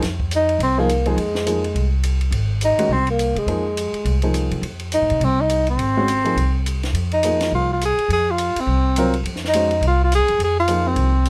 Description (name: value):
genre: modal jazz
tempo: 208 BPM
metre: 4/4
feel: swing 60% on 8ths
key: F phrygian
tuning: A4 = 442 Hz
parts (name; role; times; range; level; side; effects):
- upright bass; bass; 0.0-11.3 s; Ab1 to C3; -23 LUFS; equal; none
- compact cocktail drum kit; drums; 0.0-11.3 s; hi-hat, kick drum, ride cymbal, snare drum; -33 LUFS; equal; none
- breathy tenor saxophone; melody; 0.4-11.3 s; Ab3 to Ab4; -22 LUFS; equal; none
- warm baby grand piano; accompaniment; 0.8-11.1 s; Eb3 to C5; -26 LUFS; equal; none
room: little or no reverb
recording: close, detailed microphones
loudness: -19 LUFS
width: mono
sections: 0.0-11.3 A section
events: none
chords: 0.0 Fm7